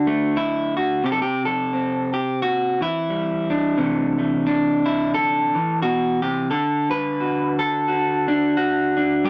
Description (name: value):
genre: folk, solo fingerstyle acoustic guitar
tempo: 88 BPM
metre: 4/4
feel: swing 59% on 8ths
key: unclear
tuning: A4 = 440 Hz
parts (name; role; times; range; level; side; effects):
- electric guitar through a small old amp; solo; 0.0-9.3 s; G2 to B4; -21 LUFS; equal; none
room: moderate studio reverb, RT60 0.5 s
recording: dark, warm production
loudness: -21 LUFS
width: mono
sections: 0.0-9.3 A section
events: none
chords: 0.0 D; 1.0 C; 3.8 Am/C; 6.5 D